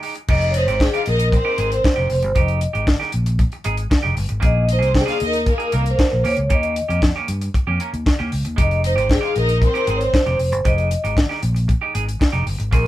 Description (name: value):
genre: disco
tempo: 116 BPM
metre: 4/4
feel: straight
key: F minor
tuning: A4 = 440 Hz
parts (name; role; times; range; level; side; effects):
- semi-hollow electric guitar; accompaniment; 0.0-12.9 s; Ab3 to Bb4; -26 LUFS; right 5 dB; none
- tight funk drum kit; drums; 0.0-12.8 s; crash cymbal, hi-hat, kick drum, snare drum; -19 LUFS; equal; none
- vibraphone with soft mallets; melody; 0.3-12.9 s; Ab4 to Eb5; -21 LUFS; equal; none
- fingered electric bass; bass; 0.3-12.9 s; F1 to G2; -20 LUFS; equal; none
- warm studio violin section; second line; 0.6-10.4 s; Bb3 to G5; -26 LUFS; left 1 dB; none
room: light reverb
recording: band playing live in one room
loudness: -16 LUFS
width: side -14 dB against mid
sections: 0.3-12.9 A section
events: none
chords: 0.3 Fm9; 4.4 Bb7sus4; 6.2 Eb7; 8.6 Fm9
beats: | 0.29 0.81 1.33 1.84 | 2.36 2.88 3.40 3.92 | 4.43 4.95 5.47 5.99 | 6.51 7.03 7.54 8.06 | 8.58 9.10 9.62 10.13 | 10.65 11.17 11.69 12.21 | 12.72